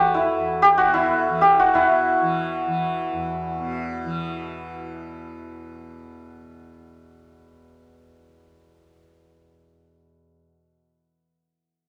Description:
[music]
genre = indian classical, Hindustani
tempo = 189 BPM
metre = 4/4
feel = straight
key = E raga kafi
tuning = A4 = 440 Hz
[part]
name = santur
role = melody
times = 0.0-5.2 s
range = E4 to C#5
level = -21 LUFS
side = equal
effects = none
[part]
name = tanpura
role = drone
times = 0.0-11.2 s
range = E2 to E3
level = -35 LUFS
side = equal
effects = none
[part]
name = tabla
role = percussion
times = 0.1-1.9 s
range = none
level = -31 LUFS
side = equal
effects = none
[sound]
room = wet studio reverb, RT60 0.7 s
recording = none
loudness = -21 LUFS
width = mono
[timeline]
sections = 0.0-1.7 A section; 1.7-4.3 B section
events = none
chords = none

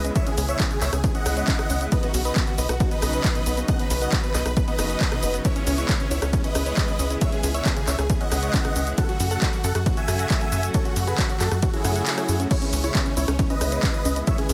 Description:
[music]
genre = uplifting trance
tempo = 136 BPM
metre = 4/4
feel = straight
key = C# minor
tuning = A4 = 440 Hz
[part]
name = big supersaw lead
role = melody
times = 0.0-14.5 s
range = C#4 to G#5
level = -31 LUFS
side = equal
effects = sidechain pumping
[part]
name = lush unison pad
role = sustained chords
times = 0.0-14.4 s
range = C#3 to F#4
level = -34 LUFS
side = equal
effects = chorus, sidechain pumping
[part]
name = tight sequenced synth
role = arpeggios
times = 0.0-14.5 s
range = B2 to F#5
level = -35 LUFS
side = equal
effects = chorus, phaser, sidechain pumping
[part]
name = tight sequencer bass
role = bass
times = 0.0-14.5 s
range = F#1 to F#2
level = -28 LUFS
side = equal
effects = sidechain pumping
[part]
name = big-room dance drum kit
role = drums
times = 0.0-14.5 s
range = crash cymbal, handclaps, hi-hat, ride cymbal, rim click, shaker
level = -31 LUFS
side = equal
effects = none
[part]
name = impact and swell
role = sound effects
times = 0.0-0.2, 11.8-12.5 s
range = none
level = -42 LUFS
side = equal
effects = none
[part]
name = electronic kick drum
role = drums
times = 0.2-14.4 s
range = none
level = -26 LUFS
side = equal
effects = overdrive
[sound]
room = light reverb, digital ambience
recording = none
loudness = -23 LUFS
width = mono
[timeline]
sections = 0.0-14.5 A section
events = impact 0.0; swell 11.8-12.5; kick drops out 12.1-12.5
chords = 0.0 C#m7; 1.9 Badd9; 5.4 C#m7; 9.0 F#m; 12.5 C#m7

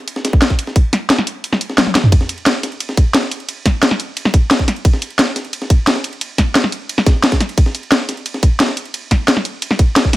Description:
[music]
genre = drum and bass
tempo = 176 BPM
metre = 4/4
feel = straight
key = none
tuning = none
[part]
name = breakbeat sampler-style drum kit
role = drums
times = 0.1-10.2 s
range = ride cymbal, snare drum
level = -25 LUFS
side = equal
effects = high-pass filter on cymbals, high-pass filter on snare
[part]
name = drum and bass drum kit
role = drums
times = 0.1-10.2 s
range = hi-hat, ride cymbal, snare drum, toms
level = -15 LUFS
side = equal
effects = none
[part]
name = electronic kick drum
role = drums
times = 0.3-10.1 s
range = none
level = -12 LUFS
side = equal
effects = none
[sound]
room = little or no reverb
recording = none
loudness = -13 LUFS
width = side -16 dB against mid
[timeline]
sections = 0.0-2.1 A section; 2.1-10.2 A section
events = drop 0.0-2.1, 2.1-10.2; kick drops out 1.4-2.1; drum fill 1.8-2.1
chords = none

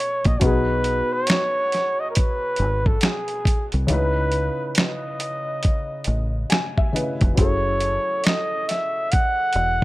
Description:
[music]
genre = lo-fi hip hop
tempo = 69 BPM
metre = 4/4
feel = swing 63% on 16ths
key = C# minor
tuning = A4 = 440 Hz
[part]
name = mellow flugelhorn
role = melody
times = 0.0-9.8 s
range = G#4 to F#5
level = -23 LUFS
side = right 1 dB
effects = none
[part]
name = dark upright piano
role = accompaniment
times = 0.0-9.8 s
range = B2 to G#5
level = -28 LUFS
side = left 2 dB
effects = cassette tape
[part]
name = dusty soul sampler-style drum kit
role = drums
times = 0.0-9.8 s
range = hi-hat, kick drum, snare drum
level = -20 LUFS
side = equal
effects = overdrive
[part]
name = deep dub fingered electric bass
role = bass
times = 0.3-9.8 s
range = E1 to C#2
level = -23 LUFS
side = equal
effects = none
[sound]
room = light reverb, studio ambience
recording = none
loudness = -19 LUFS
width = side -18 dB against mid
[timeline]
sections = 0.0-9.8 A section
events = upright piano fill 6.1-7.4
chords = 0.4 G#m7/B; 3.9 C#m9; 7.4 F#m9

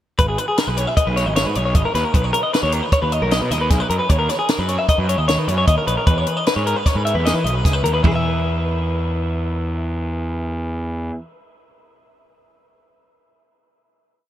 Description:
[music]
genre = math rock and midwest emo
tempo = 153 BPM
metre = 5/4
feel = straight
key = E lydian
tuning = A4 = 440 Hz
[part]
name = direct-recorded clean electric guitar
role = arpeggios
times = 0.2-11.2 s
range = E4 to E5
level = -20 LUFS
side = left 1 dB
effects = lush chorus
[part]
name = fuzz picked electric bass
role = bass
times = 0.2-11.1 s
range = G#1 to E3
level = -21 LUFS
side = equal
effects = overdrive
[part]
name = compact cocktail drum kit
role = drums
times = 0.2-8.1 s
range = hi-hat, kick drum, snare drum, toms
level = -20 LUFS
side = equal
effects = none
[sound]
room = moderate huge ambient reverb, RT60 8.8 s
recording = dreamy mix soaked in reverb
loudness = -17 LUFS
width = side -12 dB against mid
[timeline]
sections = 0.2-8.0 A section; 8.0-12.0 final chord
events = none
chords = 0.2 G#m; 2.1 Bmaj7; 4.1 D#m7; 6.1 Emaj7; 8.0 E5

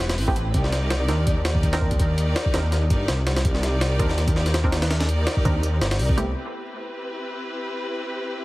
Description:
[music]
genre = drum and bass, jungle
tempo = 165 BPM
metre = 4/4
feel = swing 54% on 16ths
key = unclear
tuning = A4 = 441 Hz
[part]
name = clear studio string section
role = sustained chords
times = 0.0-8.4 s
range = C4 to D5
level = -29 LUFS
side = left 1 dB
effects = low-pass filter
[part]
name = detuned saw bass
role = bass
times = 0.0-6.3 s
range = E1 to Eb2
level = -22 LUFS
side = equal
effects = none
[part]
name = jungle sampler-style drum kit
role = drums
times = 0.0-6.3 s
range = hi-hat, kick drum, snare drum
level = -23 LUFS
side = equal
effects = overdrive
[part]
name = filtered dub chord stab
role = stabs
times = 0.3-6.5 s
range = A3 to Bb4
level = -32 LUFS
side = right 2 dB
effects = chorus, dub echo
[sound]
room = light reverb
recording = heavily compressed radio sound, multiband compression, vinyl crackle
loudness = -20 LUFS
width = side -19 dB against mid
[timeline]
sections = 0.0-6.4 A section; 6.4-8.4 B section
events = drop 0.0-6.4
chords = 0.0 Am9; 0.5 Cm9; 6.4 Am9

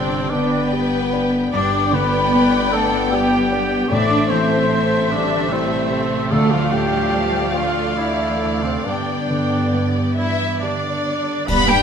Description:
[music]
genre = cinematic, emotional film score for orchestra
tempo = 45-51 BPM (dotted quarters)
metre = 6/8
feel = rubato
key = unclear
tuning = A4 = 440 Hz
[part]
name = mellow duduk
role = melody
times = 0.0-10.2 s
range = C4 to D5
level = -26 LUFS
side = left 3 dB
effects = none
[part]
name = warm symphonic violin section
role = melody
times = 0.0-11.8 s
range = D4 to G5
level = -28 LUFS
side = left 2 dB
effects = none
[part]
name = mellow cor anglais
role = second line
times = 0.0-11.8 s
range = C4 to D5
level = -27 LUFS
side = right 3 dB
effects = none
[part]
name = mellow flute section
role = second line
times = 0.0-11.8 s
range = C5 to D6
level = -26 LUFS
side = left 3 dB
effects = none
[part]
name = warm symphonic violin section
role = second line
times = 0.0-11.8 s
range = B4 to B5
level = -26 LUFS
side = left 2 dB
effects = none
[part]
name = dark baby grand piano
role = accompaniment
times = 0.0-11.8 s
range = D2 to G4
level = -26 LUFS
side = left 2 dB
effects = none
[part]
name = rich symphonic viola section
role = accompaniment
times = 0.0-11.8 s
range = A3 to D4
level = -26 LUFS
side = right 1 dB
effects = none
[part]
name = mellow French horn section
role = sustained chords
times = 0.0-11.8 s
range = F3 to G4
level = -24 LUFS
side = left 3 dB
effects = none
[part]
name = clear symphonic double bass section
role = bass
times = 0.0-11.8 s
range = G1 to G2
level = -26 LUFS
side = right 4 dB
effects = none
[part]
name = warm studio cello section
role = bass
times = 0.0-11.8 s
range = C3 to D4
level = -26 LUFS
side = right 4 dB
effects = none
[part]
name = timpani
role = percussion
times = 3.9-7.5 s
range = A2 to D3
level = -26 LUFS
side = right 1 dB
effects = none
[part]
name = clash cymbals and concert bass drum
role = percussion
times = 11.5-11.8 s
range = none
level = -22 LUFS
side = right 1 dB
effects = none
[sound]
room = wet recital hall reverb, RT60 1.6 s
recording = none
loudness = -16 LUFS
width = side -7 dB against mid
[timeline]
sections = 0.0-11.5 A section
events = band accent 11.5-11.8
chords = 0.0 G; 3.9 Am; 6.3 Dm; 8.9 G

